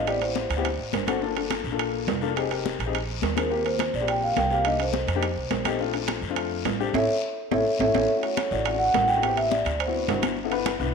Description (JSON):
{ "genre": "Afro-Cuban jazz", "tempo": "210 BPM", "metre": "4/4", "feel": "straight", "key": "unclear", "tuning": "A4 = 440 Hz", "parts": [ { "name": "vibraphone with soft mallets", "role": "melody", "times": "0.0-1.0, 3.4-10.2 s", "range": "A4 to G5", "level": "-25 LUFS", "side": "right 2 dB", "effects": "none" }, { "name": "dark upright piano", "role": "accompaniment", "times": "0.0-10.9 s", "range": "A3 to B4", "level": "-29 LUFS", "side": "left 9 dB", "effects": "none" }, { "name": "upright bass", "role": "bass", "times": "0.0-10.9 s", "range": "F1 to F2", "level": "-32 LUFS", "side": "right 2 dB", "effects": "none" }, { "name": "congas", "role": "percussion", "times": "0.1-10.9 s", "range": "none", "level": "-32 LUFS", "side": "left 8 dB", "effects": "none" }, { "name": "guiro", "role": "percussion", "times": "0.1-10.9 s", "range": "none", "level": "-37 LUFS", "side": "left 9 dB", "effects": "none" }, { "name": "timbales", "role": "percussion", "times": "0.1-10.8 s", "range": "none", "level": "-31 LUFS", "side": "right 13 dB", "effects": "none" } ], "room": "wet echo chamber reverb, RT60 1.5 s, small room reverb", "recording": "1960s-style stereo with parts hard left and right", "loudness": "-22 LUFS", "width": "side -5 dB against mid", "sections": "0.0-8.1 A section; 8.1-10.9 B section", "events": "band accent 6.9-8.1; drum fill 7.5-8.1", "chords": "0.1 Am7; 0.6 D7; 1.2 Gm9; 2.4 Fm7; 2.9 Bb7; 3.5 Eb6; 4.7 Cm7; 5.2 F7; 5.8 Bbmaj7; 6.9 A; 8.1 Dmaj9; 9.2 Am7; 9.8 D13; 10.4 G6" }